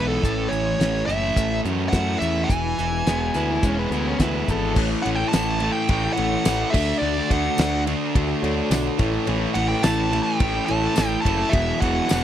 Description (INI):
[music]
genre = classic rock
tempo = 106 BPM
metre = 4/4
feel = straight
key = A major from 4.8 s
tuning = A4 = 440 Hz
[part]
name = dark smooth lead guitar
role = melody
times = 0.0-12.2 s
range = A4 to A5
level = -26 LUFS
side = equal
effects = overdrive
[part]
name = picked plugged-in steel-string acoustic guitar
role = accompaniment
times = 0.0-12.2 s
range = E2 to F#4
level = -34 LUFS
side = right 4 dB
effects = none
[part]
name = overdriven electric guitar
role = riff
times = 0.0-12.2 s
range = E2 to E4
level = -26 LUFS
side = right 11 dB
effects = none
[part]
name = sludgy distorted guitar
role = riff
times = 0.0-12.2 s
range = E2 to E4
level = -27 LUFS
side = left 10 dB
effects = overdrive
[part]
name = growling picked electric bass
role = bass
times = 0.0-12.2 s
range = E1 to F#2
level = -27 LUFS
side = equal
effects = overdrive
[part]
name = damped 70s drum kit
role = drums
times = 0.2-12.2 s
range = crash cymbal, hi-hat, kick drum, ride cymbal, snare drum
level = -23 LUFS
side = equal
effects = none
[part]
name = overdriven electric guitar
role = second line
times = 3.4-4.8 s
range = C#4 to B4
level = -30 LUFS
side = left 3 dB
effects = spring reverb
[part]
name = bright reed electric piano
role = accompaniment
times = 4.7-12.2 s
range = E4 to E5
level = -32 LUFS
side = left 4 dB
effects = fast tremolo
[part]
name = tambourine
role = percussion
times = 5.3-12.2 s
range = none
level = -35 LUFS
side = left 7 dB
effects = none
[sound]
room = little or no reverb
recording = dry, close 1970s-style studio recording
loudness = -19 LUFS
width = side -10 dB against mid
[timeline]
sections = 0.0-4.8 A section; 4.8-12.2 B section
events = none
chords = 0.2 A; 2.5 E; 4.8 A; 6.7 D; 9.0 A; 11.5 Eadd9